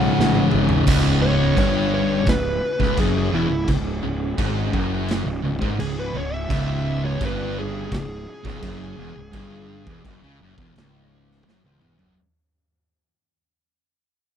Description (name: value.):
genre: stoner and doom metal.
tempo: 85 BPM.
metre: 4/4.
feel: straight.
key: unclear.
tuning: A4 = 440 Hz.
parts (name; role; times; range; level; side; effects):
fuzz lead guitar; melody; 0.0-10.0 s; E4 to G#5; -28 LUFS; equal; distortion, tape echo.
swarming drone; sustained chords; 0.0-12.1 s; C#3 to C#5; -34 LUFS; right 4 dB; built-in reverb.
distorted electric guitar; riff; 0.0-12.1 s; C#2 to C#3; -29 LUFS; equal; overdrive.
thick fuzz guitar; riff; 0.0-12.2 s; C#2 to C#3; -25 LUFS; left 8 dB; distortion.
thick fuzz guitar; riff; 0.0-12.2 s; C#2 to C#3; -27 LUFS; right 10 dB; distortion.
fuzz fingered electric bass; bass; 0.0-12.2 s; C#1 to C#2; -28 LUFS; right 1 dB; overdrive, tube saturation.
raw garage drum kit; drums; 0.2-12.2 s; crash cymbal, kick drum, snare drum, toms; -26 LUFS; equal; none.
room: little or no reverb.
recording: none.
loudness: -19 LUFS.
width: side -9 dB against mid.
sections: 0.9-12.2 A section.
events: drum fill 0.2-0.9, 11.5-12.2; fade-out 0.9-12.2; lead electric guitar solo 0.9-12.2.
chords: 0.0 C#5; 0.9 C#m.